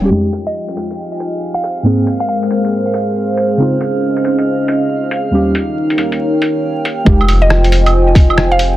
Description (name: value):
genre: future garage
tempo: 138 BPM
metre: 4/4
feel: swing 64% on 16ths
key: F minor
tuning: A4 = 441 Hz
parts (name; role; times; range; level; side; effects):
- muted felt-like synth keys; accompaniment; 0.0-7.2 s; Eb2 to Ab4; -17 LUFS; equal; chorus, vintage 12-bit sampler grit, sidechain pumping, tape echo
- dark analog pad; sustained chords; 0.0-8.8 s; Ab3 to Ab5; -16 LUFS; equal; chorus, vintage 12-bit sampler grit, sidechain pumping
- soft 808-style bass; bass; 0.0-0.1, 7.1-8.8 s; F1; -13 LUFS; equal; sidechain pumping
- drifting glass-harmonics texture; texture; 1.0-7.1 s; F5; -30 LUFS; right 2 dB; chorus, built-in reverb
- lo-fi sampler-style drum kit; drums; 0.3-8.7 s; claves, hi-hat, rim click; -18 LUFS; right 1 dB; low-pass filter on perc, vintage 12-bit sampler grit, low-pass filter on hats, soft clipping on snare, low-pass filter on snare
- mallet-like synth pluck; melody; 0.5-2.4, 7.4-8.7 s; Eb5 to F5; -21 LUFS; equal; chorus, tape echo
- electronic kick drum; drums; 7.1-8.3 s; none; -8 LUFS; equal; vintage 12-bit sampler grit
room: light reverb, digital ambience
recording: dense, heavily limited modern master, vinyl crackle, low-pass filter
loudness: -12 LUFS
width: side -14 dB against mid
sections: 0.1-7.1 A section; 7.1-8.8 B section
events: filter sweep 0.1-7.1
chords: 0.1 Fm7; 1.8 Abmaj7; 3.6 Dbmaj7; 5.3 Eb7; 7.1 Fm7